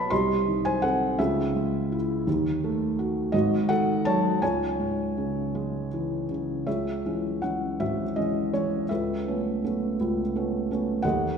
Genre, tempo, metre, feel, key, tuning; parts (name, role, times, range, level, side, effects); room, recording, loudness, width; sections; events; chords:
classical, lyrical solo piano; 55 BPM (dotted quarters); 6/8; uneven beats, rubato; C# minor; A4 = 442 Hz
felt-muted upright piano; solo; 0.0-11.4 s; G#1 to C6; -24 LUFS; equal
wet scoring stage reverb, RT60 1.6 s; recorded in a church or concert hall; -24 LUFS; side -6 dB against mid
0.0-6.7 A section; 6.7-11.4 B section
0.1 Cdim7; 1.2 C#m; 2.3 D#dim; 3.3 G#5; 4.4 C#m; 8.9 Aadd9/C#